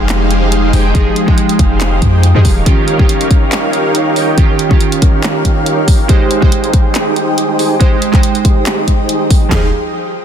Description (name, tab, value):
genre	future bass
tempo	140 BPM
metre	4/4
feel	swing 54% on 16ths, half-time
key	F minor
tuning	A4 = 441 Hz
part	glassy digital keys	accompaniment	0.0-9.7 s	Eb3 to G5	-17 LUFS	right 5 dB	chorus, sidechain pumping, dub echo
part	ethereal airy pad	sustained chords	0.0-9.7 s	Ab3 to F6	-21 LUFS	left 2 dB	ensemble chorus, built-in reverb, sidechain pumping
part	dense compressed supersaw	riff	0.0-9.7 s	Eb4 to Ab5	-17 LUFS	equal	sidechain pumping, low-pass filter, dub echo
part	warm 808-style bass	bass	0.0-2.6, 9.5-9.7 s	Eb1 to F2	-12 LUFS	equal	sidechain pumping
part	pop drum kit	drums	0.1-9.4 s	handclaps, hi-hat	-20 LUFS	equal	none
part	pop drum kit	drums	0.9-9.6 s	handclaps, kick drum, snare drum, toms	-10 LUFS	equal	none
room	digital ambience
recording	dense, heavily limited modern master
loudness	-9 LUFS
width	side -9 dB against mid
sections	0.0-9.5 A section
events	filter sweep on supersaw synth 0.0-9.5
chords	0.0 Fm9; 2.4 Eb9; 6.1 Abmaj7; 9.5 Fm9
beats	0.09 0.52 | 0.95 1.38 1.81 2.23 | 2.66 3.09 3.52 3.95 | 4.38 4.81 5.24 5.66 | 6.09 6.52 6.95 7.38 | 7.81 8.23 8.66 9.09 | 9.52